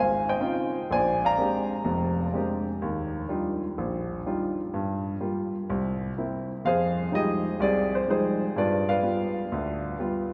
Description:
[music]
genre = solo jazz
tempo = 125 BPM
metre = 4/4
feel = swing 67% on 8ths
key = unclear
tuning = A4 = 439 Hz
[part]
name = warm grand piano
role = solo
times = 0.0-10.3 s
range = F1 to Bb5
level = -27 LUFS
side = equal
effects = none
[sound]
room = wet cathedral reverb, RT60 5.1 s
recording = recorded in a church or concert hall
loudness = -27 LUFS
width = mono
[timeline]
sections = 0.0-6.6 A section; 6.6-10.3 B section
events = none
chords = 0.0 Dbmaj9; 0.9 Bb13; 2.8 Ebmaj9; 4.7 Gm7; 5.7 C7; 6.6 Fm9; 8.6 G7

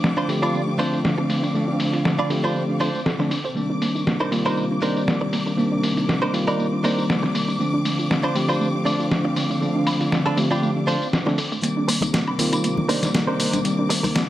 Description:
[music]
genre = nu-disco, nu disco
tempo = 119 BPM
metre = 4/4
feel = swing 54% on 16ths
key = C dorian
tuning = A4 = 436 Hz
[part]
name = bell-like tine electric piano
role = accompaniment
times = 0.0-14.3 s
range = D3 to D5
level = -23 LUFS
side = equal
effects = analog delay
[part]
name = dark studio string section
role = sustained chords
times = 0.0-14.3 s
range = C3 to D6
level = -29 LUFS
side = equal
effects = none
[part]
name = soft round pluck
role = arpeggios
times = 0.0-14.2 s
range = A3 to C5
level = -28 LUFS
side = right 3 dB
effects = chorus, cassette tape, tape echo
[part]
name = dusty soul sampler-style drum kit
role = drums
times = 0.0-14.3 s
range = hi-hat, snare drum, tambourine, woodblock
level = -25 LUFS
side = left 1 dB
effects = low-pass filter on perc, low-pass filter on hats, low-pass filter on snare, low-pass filter on room
[part]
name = direct-recorded clean electric guitar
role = riff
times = 0.2-14.2 s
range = D4 to D5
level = -26 LUFS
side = right 2 dB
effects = wide subtle chorus, low-pass filter, analog delay
[part]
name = congas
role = percussion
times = 12.0-14.1 s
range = none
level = -29 LUFS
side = left 4 dB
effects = none
[sound]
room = light reverb, digital ambience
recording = none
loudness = -19 LUFS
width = side -13 dB against mid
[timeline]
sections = 0.0-11.6 A section; 11.6-14.3 B section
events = build-up 11.6-14.3; filter sweep on clean electric guitar 11.6-14.3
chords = 0.0 Dm7; 3.6 Cm9; 7.6 Dm7; 11.6 Cm9

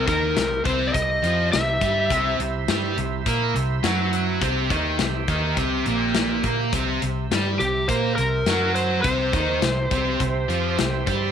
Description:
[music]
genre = blues rock power trio and southern rock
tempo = 104 BPM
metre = 4/4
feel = straight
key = C major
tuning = A4 = 439 Hz
[part]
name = overdriven slide guitar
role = melody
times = 0.0-2.4, 7.6-11.3 s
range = G4 to E5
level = -24 LUFS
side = left 1 dB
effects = none
[part]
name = overdriven tonewheel organ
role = sustained chords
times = 0.0-11.3 s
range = E4 to E5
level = -32 LUFS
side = right 11 dB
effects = slow rotary speaker
[part]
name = sludgy distorted guitar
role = riff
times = 0.0-11.3 s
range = Bb2 to Bb4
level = -24 LUFS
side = right 1 dB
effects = overdrive
[part]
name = vintage muted fingered electric bass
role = bass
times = 0.0-11.3 s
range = Bb1 to Bb2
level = -27 LUFS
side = right 1 dB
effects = none
[part]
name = big rock drum kit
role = drums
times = 0.1-11.2 s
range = hi-hat, kick drum, snare drum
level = -27 LUFS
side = left 4 dB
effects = none
[sound]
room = moderate spring reverb, RT60 2.0 s, studio ambience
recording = 1960s-style stereo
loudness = -20 LUFS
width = side -8 dB against mid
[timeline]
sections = 0.0-11.3 A section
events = none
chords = 0.0 C

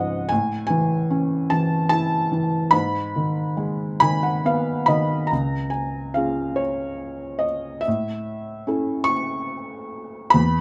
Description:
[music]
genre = classical, lyrical solo piano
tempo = 67-76 BPM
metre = 3/4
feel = rubato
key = unclear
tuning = A4 = 437 Hz
[part]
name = felt-muted upright piano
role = solo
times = 0.0-10.6 s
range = C#2 to C#6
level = -23 LUFS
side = equal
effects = none
[sound]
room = light reverb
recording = close, detailed microphones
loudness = -23 LUFS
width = mono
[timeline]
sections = 0.0-5.3 A section; 5.3-10.6 B section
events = felt piano fill 3.6-5.3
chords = 0.3 A; 2.7 G#m; 5.3 C#; 7.9 A

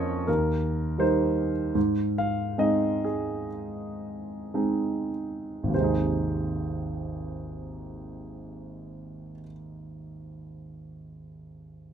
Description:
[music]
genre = classical, lyrical solo piano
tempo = 48-87 BPM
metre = 4/4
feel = rubato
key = Ab major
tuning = A4 = 440 Hz
[part]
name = warm concert grand piano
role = solo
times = 0.0-11.9 s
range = Ab1 to F5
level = -27 LUFS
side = right 1 dB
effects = none
[sound]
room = light reverb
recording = close, detailed microphones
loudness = -25 LUFS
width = side -8 dB against mid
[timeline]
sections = 0.0-5.7 A section; 5.7-10.5 B section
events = slowing down 0.0-5.7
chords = 0.3 Eb; 1.8 Ab

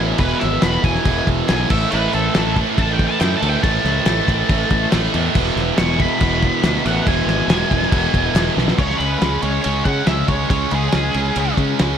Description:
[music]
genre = classic rock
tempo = 140 BPM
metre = 4/4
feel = straight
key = unclear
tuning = A4 = 440 Hz
[part]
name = distorted electric guitar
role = riff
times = 0.0-12.0 s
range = E2 to C#4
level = -24 LUFS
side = left 13 dB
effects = distortion
[part]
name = distorted electric guitar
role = riff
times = 0.0-12.0 s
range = E2 to C#4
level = -22 LUFS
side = right 15 dB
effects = overdrive
[part]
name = overdriven fingered electric bass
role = bass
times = 0.0-12.0 s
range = E1 to C#3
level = -22 LUFS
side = equal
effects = none
[part]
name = octave-fuzz lead guitar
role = melody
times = 0.2-11.5 s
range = G#4 to C#6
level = -23 LUFS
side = left 1 dB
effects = wah, distortion, digital delay
[part]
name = cloth-damped thuddy drum kit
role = drums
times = 0.2-11.9 s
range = crash cymbal, kick drum, ride cymbal, snare drum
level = -20 LUFS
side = equal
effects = none
[part]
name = group handclap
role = percussion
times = 0.6-8.5 s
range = none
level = -33 LUFS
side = left 12 dB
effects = none
[part]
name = tight distorted guitar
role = riff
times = 1.9-8.8 s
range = E2 to A3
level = -27 LUFS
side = right 1 dB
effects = distortion
[sound]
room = light reverb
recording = none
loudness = -15 LUFS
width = side -8 dB against mid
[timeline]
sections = 0.0-8.8 A section; 8.8-12.0 B section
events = lead electric guitar solo 0.0-8.8; drum fill 8.6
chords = 0.0 E; 1.7 A5; 5.4 E; 8.8 C#5

